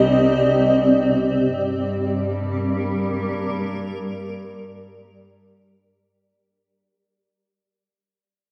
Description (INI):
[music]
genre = ambient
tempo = free time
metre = none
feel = none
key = unclear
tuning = A4 = 440 Hz
[part]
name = granular cloud pad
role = sustained chords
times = 0.0-6.2 s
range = G3 to Eb5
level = -21 LUFS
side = equal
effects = built-in reverb
[part]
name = warm chamber cello section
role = bass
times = 0.0-6.1 s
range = C2 to G2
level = -29 LUFS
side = equal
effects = none
[sound]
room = wet plate reverb, RT60 2.9 s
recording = dreamy mix soaked in reverb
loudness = -21 LUFS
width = mono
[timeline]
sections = 0.0-6.2 A section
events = fade-out 0.0-6.2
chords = 0.0 Cmadd9; 1.5 Gm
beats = free time